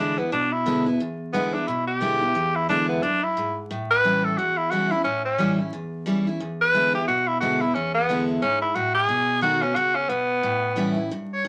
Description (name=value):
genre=rock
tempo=178 BPM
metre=4/4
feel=swing 60% on 8ths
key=E mixolydian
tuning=A4 = 440 Hz
part: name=raspy tenor saxophone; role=melody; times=0.0-11.4 s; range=B3 to C#5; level=-24 LUFS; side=equal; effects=none
part: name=picked steel-string acoustic guitar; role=accompaniment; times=0.0-11.5 s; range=E2 to F#4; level=-28 LUFS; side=equal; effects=none
room=moderate club reverb, RT60 0.5 s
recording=vinyl crackle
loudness=-23 LUFS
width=mono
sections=0.0-11.5 A section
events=none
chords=0.0 E7; 3.7 A7; 6.4 E7; 9.1 B7; 10.4 A7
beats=0.32 0.66 | 1.00 1.33 1.67 2.01 | 2.35 2.69 3.02 3.36 | 3.70 4.04 4.38 4.71 | 5.05 5.39 5.73 6.06 | 6.40 6.74 7.07 7.41 | 7.75 8.08 8.42 8.76 | 9.09 9.43 9.76 10.10 | 10.44 10.77 11.11 11.44